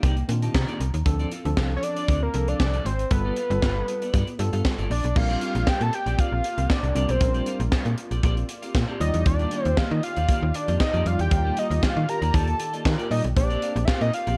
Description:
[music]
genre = early-eighties boogie funk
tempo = 117 BPM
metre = 4/4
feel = straight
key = unclear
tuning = A4 = 440 Hz
[part]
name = tine electric piano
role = accompaniment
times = 0.0-14.0 s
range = Eb3 to Bb5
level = -34 LUFS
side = equal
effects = overdrive
[part]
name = clean electric guitar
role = riff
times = 0.0-14.4 s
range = Bb3 to F5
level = -38 LUFS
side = equal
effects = lush chorus
[part]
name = slap-like FM bass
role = bass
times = 0.0-14.4 s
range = G1 to Eb3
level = -27 LUFS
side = equal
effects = none
[part]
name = tight funk drum kit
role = drums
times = 0.0-14.4 s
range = crash cymbal, handclaps, hi-hat, kick drum, snare drum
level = -28 LUFS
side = equal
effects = none
[part]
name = fat analog lead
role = melody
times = 1.8-14.4 s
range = Bb4 to Bb5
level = -30 LUFS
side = equal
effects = slapback echo
[part]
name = brassy analog pad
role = sustained chords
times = 5.2-14.4 s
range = Eb3 to D5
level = -40 LUFS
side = equal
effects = none
[part]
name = mellow synth brass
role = second line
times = 11.3-13.1 s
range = F4 to Bb4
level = -36 LUFS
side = equal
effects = chorus
[sound]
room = little or no reverb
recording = dark, warm production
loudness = -24 LUFS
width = mono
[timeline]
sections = 0.0-5.2 A section; 5.2-14.4 B section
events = tine electric piano fill 0.0-1.1; band accent 11.3-13.4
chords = 0.0 Cm9; 1.1 Dm7; 3.1 G9; 5.2 Bb69; 9.0 Ebmaj9; 13.4 Bb69

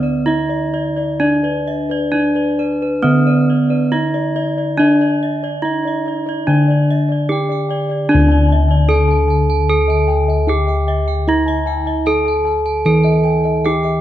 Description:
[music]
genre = gamelan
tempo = 64-76 BPM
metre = 4/4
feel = straight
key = D pelog barang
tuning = A4 = 440 Hz
[part]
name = gamelan-type bronze metallophone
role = melody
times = 0.0-14.0 s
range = B3+20c to A4-40c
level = -17 LUFS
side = right 2 dB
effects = none
[part]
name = gamelan-type bossed gongs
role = arpeggios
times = 0.0-14.0 s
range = B4+20c to A5-40c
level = -24 LUFS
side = left 7 dB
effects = none
[part]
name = gamelan-type bronze metallophone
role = arpeggios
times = 0.0-14.0 s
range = B4+20c to A5-40c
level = -25 LUFS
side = right 4 dB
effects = none
[part]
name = gamelan-type bossed gongs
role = bass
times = 0.0-14.0 s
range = D2 to E4-50c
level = -17 LUFS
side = left 1 dB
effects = none
[sound]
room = light reverb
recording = dark, warm production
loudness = -13 LUFS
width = side -12 dB against mid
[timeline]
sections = 0.0-8.1 A section; 8.1-14.0 B section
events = none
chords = none

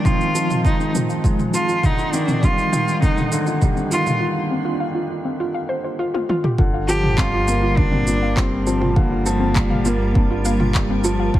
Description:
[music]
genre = piano and strings electronica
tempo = 101 BPM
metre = 4/4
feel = straight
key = unclear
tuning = A4 = 443 Hz
[part]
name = warm cello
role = melody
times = 0.0-10.7 s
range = Bb3 to G4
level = -24 LUFS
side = equal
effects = none
[part]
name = granular cloud pad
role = sustained chords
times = 0.0-11.4 s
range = F3 to Bb4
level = -28 LUFS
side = equal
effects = built-in reverb, sidechain pumping
[part]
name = felt-muted upright piano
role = riff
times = 0.0-11.4 s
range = D3 to D4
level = -23 LUFS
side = equal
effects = digital delay
[part]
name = dark detuned saw bass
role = bass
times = 0.0-11.4 s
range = G1 to C2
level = -23 LUFS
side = equal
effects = sidechain pumping, high-pass filter
[part]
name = warbly dusty pluck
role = arpeggios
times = 0.1-11.4 s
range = C4 to F5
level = -27 LUFS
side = left 1 dB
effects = chorus, sidechain pumping, digital delay
[part]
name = electronic kick drum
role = drums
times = 0.1-11.4 s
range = none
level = -19 LUFS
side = equal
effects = none
[part]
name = organic electronic drum kit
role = drums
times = 0.1-11.2 s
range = handclaps, shaker, toms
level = -25 LUFS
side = right 1 dB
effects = none
[sound]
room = light reverb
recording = none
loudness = -17 LUFS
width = side -13 dB against mid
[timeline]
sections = 0.0-6.6 A section; 6.6-11.4 B section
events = build-up 0.0-6.6; filter sweep on ambient pad 0.0-6.6; filter sweep on synth arpeggio sound 0.0-6.6; break 4.2-6.6; drum fill 6.1-6.6; drop 6.6-11.4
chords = 0.0 Fm7; 1.8 Ebmaj7; 6.6 Gm7

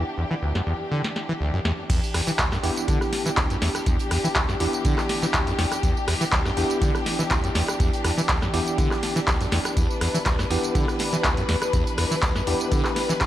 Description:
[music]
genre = acid house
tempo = 122 BPM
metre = 4/4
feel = straight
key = E minor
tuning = A4 = 440 Hz
[part]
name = rich symphonic string section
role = sustained chords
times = 0.0-13.3 s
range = E3 to B4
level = -29 LUFS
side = left 3 dB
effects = sidechain pumping
[part]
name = acid bass, saw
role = riff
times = 0.0-13.3 s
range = D2 to E3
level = -27 LUFS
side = equal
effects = overdrive, lush chorus, analog delay
[part]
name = tine electric piano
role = stabs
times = 0.0-13.3 s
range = B3 to G4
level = -30 LUFS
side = right 2 dB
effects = medium stereo tremolo, analog delay
[part]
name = warbly tape-like pad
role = texture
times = 0.0-1.9 s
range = E4 to F#5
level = -42 LUFS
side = right 3 dB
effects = none
[part]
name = booming analog drum machine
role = drums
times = 0.6-13.3 s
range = crash cymbal, handclaps, hi-hat, rim click, snare drum, tambourine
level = -27 LUFS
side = equal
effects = none
[part]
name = electronic kick drum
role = drums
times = 1.9-13.3 s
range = none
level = -25 LUFS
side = equal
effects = none
[part]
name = huge arena drum kit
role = drums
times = 1.9-13.3 s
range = hi-hat, snare drum, tambourine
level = -38 LUFS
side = right 1 dB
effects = none
[sound]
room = light reverb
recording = none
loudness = -21 LUFS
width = side -13 dB against mid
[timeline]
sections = 0.0-1.9 A section; 1.9-13.3 B section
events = drop 1.9-13.3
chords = 0.0 Em7

